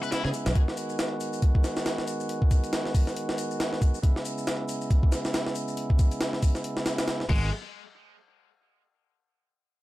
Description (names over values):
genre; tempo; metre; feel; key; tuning
breakbeat, breaks; 138 BPM; 4/4; swing 58% on 16ths; G# minor; A4 = 440 Hz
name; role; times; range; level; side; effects
percussive tonewheel organ; sustained chords; 0.0-7.5 s; C#3 to F#4; -32 LUFS; right 1 dB; overdrive, sidechain pumping
high-gain distorted guitar; riff; 0.0-0.3, 7.3-7.5 s; G#3 to B4; -35 LUFS; left 4 dB; distortion, vintage 12-bit sampler grit, ping-pong delay
shaker; drums; 0.0-7.2 s; none; -42 LUFS; left 4 dB; none
breakbeat sampler-style drum kit; drums; 0.1-7.4 s; crash cymbal, hi-hat, kick drum, snare drum; -25 LUFS; equal; none
modern bright fingered electric bass; bass; 0.2-0.5, 7.3-7.5 s; G#1 to C#3; -27 LUFS; equal; none
room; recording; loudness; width
light reverb; dark, warm production; -24 LUFS; side -17 dB against mid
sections
0.0-7.5 A section; 7.5-9.3 B section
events
none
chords
0.0 C#m7; 0.6 G#m7; 4.0 C#m7; 7.3 G#m7; 7.5 N.C.